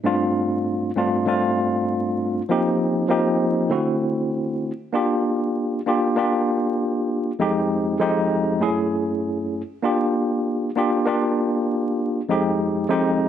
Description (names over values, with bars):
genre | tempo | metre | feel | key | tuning
hip hop | 98 BPM | 4/4 | swing 55% on 16ths | G phrygian from 4.9 s | A4 = 445 Hz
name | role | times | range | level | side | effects
tine electric piano | solo | 0.0-13.3 s | F2 to Ab4 | -19 LUFS | equal | overdrive, fast stereo tremolo, cassette tape, high-pass filter, low-pass filter
room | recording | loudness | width
moderate echo chamber reverb, RT60 1.3 s, digital ambience | vinyl crackle | -20 LUFS | side -9 dB against mid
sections
0.0-4.9 A section; 4.9-13.3 B section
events
none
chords
0.0 G9sus4; 2.5 F9sus4; 3.7 D7; 4.9 Gm7; 7.4 Fm7; 8.6 F#m7; 9.8 Gm7; 12.3 Fm7